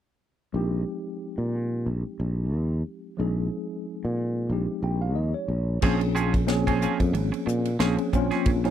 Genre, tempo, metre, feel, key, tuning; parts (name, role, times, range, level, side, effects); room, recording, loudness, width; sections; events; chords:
electric jazz fusion; 91 BPM; 4/4; swing 56% on 16ths; Bb minor; A4 = 445 Hz
mellow tine electric piano; accompaniment; 0.5-8.7 s; F3 to G5; -29 LUFS; left 1 dB; overdrive, fast stereo tremolo
sustaining fretless electric bass; bass; 0.5-8.7 s; Ab1 to Bb2; -26 LUFS; equal
twangy electric guitar; stabs; 5.8-8.7 s; F3 to Ab4; -29 LUFS; right 7 dB; lush chorus
tight funk drum kit; drums; 5.8-8.7 s; crash cymbal, hi-hat, kick drum, ride cymbal, snare drum; -27 LUFS; equal
little or no reverb; dry, close 1970s-style studio recording; -24 LUFS; side -10 dB against mid
0.5-5.8 A section; 5.8-8.7 B section
tine electric piano fill 4.5-5.8
0.5 Bb13sus4; 5.5 Bbm; 5.8 Bbm9